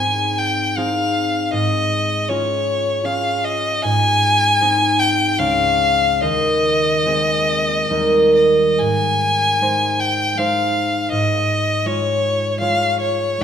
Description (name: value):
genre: classical, romantic duo for violin and harp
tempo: 64-82 BPM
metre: 3/4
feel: rubato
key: Ab major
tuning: A4 = 440 Hz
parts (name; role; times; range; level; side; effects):
- clear violin; melody; 0.0-13.4 s; Db5 to Ab5; -17 LUFS; left 2 dB; none
- concert harp; accompaniment; 0.0-13.4 s; Db2 to Db5; -19 LUFS; right 1 dB; none
room: moderate recital hall reverb, RT60 1.3 s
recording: none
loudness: -15 LUFS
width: side -8 dB against mid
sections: 0.0-13.4 A section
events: none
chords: 0.0 Ab; 1.5 Db/Ab; 3.8 Ab; 5.4 Db; 6.2 Ab/Eb; 7.9 Eb; 8.8 Ab; 11.1 Db/Ab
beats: 0.77 | 1.54 2.29 3.05 | 3.85 4.61 5.38 | 6.21 7.06 7.91 | 8.80 9.62 10.38 | 11.13 11.86 12.61 | 13.41